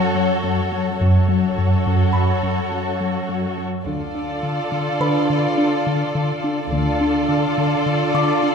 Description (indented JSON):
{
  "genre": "cinematic",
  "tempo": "105 BPM",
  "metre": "5/4",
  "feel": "straight",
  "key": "unclear",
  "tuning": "A4 = 441 Hz",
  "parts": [
    { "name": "muted symphonic violin section", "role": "melody", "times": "0.0-8.5 s", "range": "Db5 to D5", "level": "-26 LUFS", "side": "left 4 dB", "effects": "none" },
    { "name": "muted studio violin section", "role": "second line", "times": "0.0-8.5 s", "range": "F4 to A4", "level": "-24 LUFS", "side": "equal", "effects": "none" },
    { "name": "smooth synth bass", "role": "riff", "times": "0.0-8.5 s", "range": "Gb2 to D4", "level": "-21 LUFS", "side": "left 1 dB", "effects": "none" },
    { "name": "muted symphonic cello section", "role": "bass", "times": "0.0-8.5 s", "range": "Gb2 to D3", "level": "-24 LUFS", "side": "right 3 dB", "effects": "none" },
    { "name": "muted symphonic double bass section", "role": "bass", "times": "1.0-7.3 s", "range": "Gb1 to D2", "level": "-29 LUFS", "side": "right 3 dB", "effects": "none" },
    { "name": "music box", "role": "texture", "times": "2.1-8.5 s", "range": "Cb5 to D6", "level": "-27 LUFS", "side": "left 1 dB", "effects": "none" }
  ],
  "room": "wet scoring stage reverb, RT60 1.9 s",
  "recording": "minimal, uncompressed stereo recording",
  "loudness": "-17 LUFS",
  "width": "side -6 dB against mid",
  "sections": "0.0-8.5 A section",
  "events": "none",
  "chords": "0.0 Gbm; 3.9 Dm",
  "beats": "0.43 | 1.00 1.57 2.15 2.72 3.29 | 3.86 4.43 5.00 5.58 6.15 | 6.72 7.29 7.86 8.43"
}